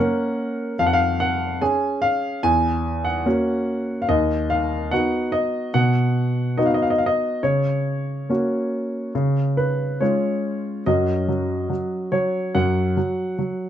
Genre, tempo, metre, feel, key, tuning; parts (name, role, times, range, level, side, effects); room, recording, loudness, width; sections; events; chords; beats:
classical-period piano sonatina; 71 BPM; 4/4; uneven beats; F# major; A4 = 440 Hz
clear grand piano; solo; 0.0-13.7 s; D#2 to G#5; -19 LUFS; equal
light reverb; dark, warm production; -19 LUFS; side -10 dB against mid
0.0-10.9 A section; 10.9-13.7 B section
0.0 F#; 0.8 C#/E#; 2.4 F#7/E; 4.1 B/D#; 5.7 B; 7.4 F#/C#; 9.2 C#; 10.9 F#5
| 0.79 1.61 2.43 3.26 | 4.08 4.91 5.74 6.58 | 7.43 8.29 9.15 10.02 | 10.87 11.70 12.55 13.39